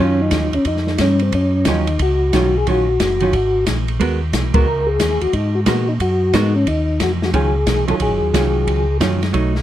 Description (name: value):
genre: soul jazz organ trio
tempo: 180 BPM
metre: 4/4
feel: swing 63% on 8ths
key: Eb minor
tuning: A4 = 440 Hz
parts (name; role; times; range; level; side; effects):
- percussive tonewheel organ; melody; 0.0-9.0 s; C4 to Bb4; -18 LUFS; left 2 dB; slow rotary speaker, chorus vibrato
- archtop guitar, miked and amplified; accompaniment; 0.0-9.5 s; Eb3 to Bb4; -20 LUFS; right 5 dB; none
- mellow tonewheel organ; bass; 0.0-9.6 s; Gb1 to Bb2; -19 LUFS; equal; slow rotary speaker
- open jazz drum kit; drums; 0.3-9.6 s; hi-hat, kick drum, ride cymbal, snare drum; -22 LUFS; equal; none
room: little or no reverb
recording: dark, warm production, faint mains hum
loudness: -15 LUFS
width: side -12 dB against mid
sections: 0.0-9.6 A section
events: band accent 4.5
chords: 0.0 Ebm9; 4.0 Abm9; 6.7 Ebm9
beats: 0.33 0.66 0.99 | 1.33 1.66 2.00 2.33 | 2.66 3.00 3.33 3.67 | 4.00 4.33 4.67 5.00 | 5.34 5.67 6.00 6.34 | 6.67 7.01 7.34 7.67 | 8.01 8.34 8.67 9.01 | 9.34